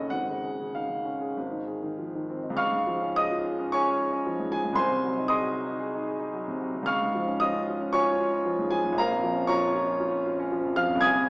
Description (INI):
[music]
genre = classical, romantic character piece for solo piano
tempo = 94-118 BPM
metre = 4/4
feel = rubato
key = Db major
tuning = A4 = 440 Hz
[part]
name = warm grand piano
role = solo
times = 0.0-11.3 s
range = Gb1 to G#6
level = -24 LUFS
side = equal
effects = none
[sound]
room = wet recital hall reverb, RT60 1.5 s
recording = heard from further back in the room, small speaker sound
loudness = -25 LUFS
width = side -31 dB against mid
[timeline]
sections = 0.0-2.6 A section; 2.6-11.3 B section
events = none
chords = 0.1 Db/Ab; 1.4 Ab; 2.6 Db; 4.8 Ab7/C; 6.9 Db; 9.0 Bbm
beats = | 0.09 0.73 1.36 1.98 | 2.58 3.15 3.70 4.24 | 4.77 5.29 5.82 6.34 | 6.87 7.39 7.93 8.45 | 8.96 9.47 9.99 10.52 | 11.03